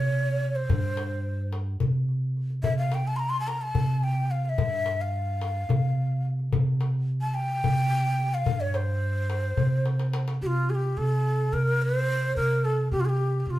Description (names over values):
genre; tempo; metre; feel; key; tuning
Turkish makam ensemble; 216 BPM (eighths); 7/8; straight; C makam hicaz; A4 = 440 Hz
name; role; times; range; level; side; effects
breathy ney; melody; 0.0-13.6 s; F4 to C6; -29 LUFS; equal; plate reverb
upright bass; bass; 0.0-13.6 s; G2 to C3; -26 LUFS; right 1 dB; none
darbuka; percussion; 0.4-10.4 s; none; -30 LUFS; left 4 dB; none
room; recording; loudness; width
wet studio reverb, RT60 0.6 s; heard from further back in the room; -24 LUFS; side -15 dB against mid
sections
0.0-10.4 A section; 10.4-13.6 B section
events
drum fill 9.9-10.4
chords
none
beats
0.14 0.42 | 0.69 0.97 1.25 1.53 1.80 2.08 2.36 | 2.64 2.92 3.19 3.47 3.75 4.03 4.30 | 4.58 4.86 5.14 5.41 5.69 5.97 6.25 | 6.52 6.80 7.08 7.36 7.63 7.91 8.19 | 8.47 8.74 9.02 9.30 9.58 9.86 10.13 | 10.41 10.69 10.97 11.24 11.52 11.80 12.08 | 12.36 12.63 12.91 13.19 13.47